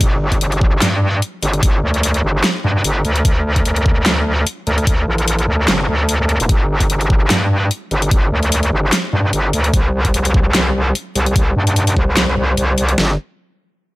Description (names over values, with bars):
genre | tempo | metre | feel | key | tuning
heavy wobble dubstep | 148 BPM | 4/4 | swing 54% on 16ths, half-time | unclear | A4 = 441 Hz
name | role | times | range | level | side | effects
metallic wobble bass | bass | 0.0-13.2 s | Eb1 to G2 | -15 LUFS | equal | chorus, overdrive
dubstep drum kit | drums | 0.0-13.1 s | kick drum, snare drum | -15 LUFS | equal | overdrive
dubstep drum kit | drums | 0.0-13.0 s | handclaps, hi-hat, snare drum | -19 LUFS | equal | none
room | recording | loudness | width
little or no reverb | none | -13 LUFS | side -19 dB against mid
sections
0.0-13.0 A section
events
none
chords
none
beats
| 0.01 0.41 0.82 1.22 | 1.63 2.03 2.44 2.84 | 3.25 3.65 4.06 4.47 | 4.87 5.28 5.68 6.09 | 6.49 6.90 7.30 7.71 | 8.11 8.52 8.93 9.33 | 9.74 10.14 10.55 10.95 | 11.36 11.76 12.17 12.57 | 12.98